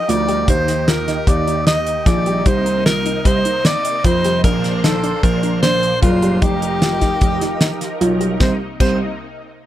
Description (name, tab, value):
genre	progressive instrumental, band music in an uneven meter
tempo	151 BPM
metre	5/4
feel	straight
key	C minor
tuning	A4 = 441 Hz
part	breathy tenor saxophone	melody	0.0-9.0 s	F4 to Eb5	-20 LUFS	left 1 dB	none
part	analog string pad	accompaniment	0.0-9.0 s	Bb2 to C5	-25 LUFS	equal	ensemble chorus
part	soft round pluck	arpeggios	0.0-9.0 s	C4 to G4	-25 LUFS	left 2 dB	chorus
part	dark baby grand piano	bass	0.1-9.0 s	F1 to F2	-20 LUFS	right 2 dB	none
part	damped 70s drum kit	drums	0.1-8.9 s	crash cymbal, hi-hat, kick drum, snare drum	-17 LUFS	equal	none
room	light reverb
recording	none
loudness	-14 LUFS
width	side -12 dB against mid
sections	0.0-8.4 A section; 8.4-9.7 B section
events	none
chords	0.5 Ebmaj7; 2.5 Cm7; 4.4 Bbadd9; 6.4 F9sus4; 8.4 Cm7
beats	0.08 | 0.48 0.88 1.27 1.67 2.06 | 2.46 2.86 3.25 3.65 4.05 | 4.44 4.84 5.24 5.63 6.03 | 6.43 6.82 7.22 7.62 8.01 | 8.41 8.81